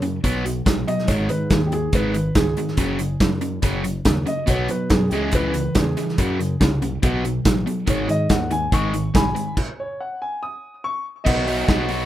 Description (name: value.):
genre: indie rock.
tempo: 142 BPM.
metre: 4/4.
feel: straight.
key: B major.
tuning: A4 = 441 Hz.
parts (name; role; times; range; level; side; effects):
crunchy overdriven guitar; riff; 0.0-12.1 s; F#2 to F#4; -23 LUFS; equal; none.
modern bright fingered electric bass; bass; 0.0-12.0 s; F#1 to B2; -27 LUFS; equal; none.
loose indie drum kit; drums; 0.0-12.0 s; crash cymbal, hi-hat, kick drum, snare drum; -21 LUFS; equal; none.
warm upright piano; melody; 0.9-12.1 s; G4 to D#6; -26 LUFS; equal; none.
room: light reverb.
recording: rough home demo mix.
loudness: -19 LUFS.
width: side -13 dB against mid.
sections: 0.0-11.3 A section.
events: upright piano solo 0.0-11.3; stop 9.6-11.3.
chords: 0.2 B5; 1.1 G#m; 2.8 F#5; 4.5 B5; 5.1 C#m; 6.2 F#5; 7.0 B5; 7.9 G#m; 9.6 N.C.; 11.3 B.